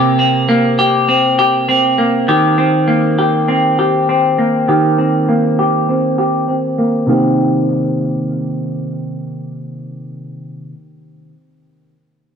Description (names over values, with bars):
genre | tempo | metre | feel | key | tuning
dream pop | 100 BPM | 4/4 | straight | C minor | A4 = 439 Hz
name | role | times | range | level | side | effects
semi-hollow electric guitar | solo | 0.0-10.8 s | C3 to G4 | -12 LUFS | equal | wide subtle chorus, low-pass filter, analog delay
room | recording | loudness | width
light reverb | dry, gritty hardware recording | -12 LUFS | side -7 dB against mid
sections
0.0-7.1 A section; 7.1-9.5 B section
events
filter sweep on clean electric guitar 0.0-7.1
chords
0.0 C5; 2.3 Eb6; 7.1 Cm7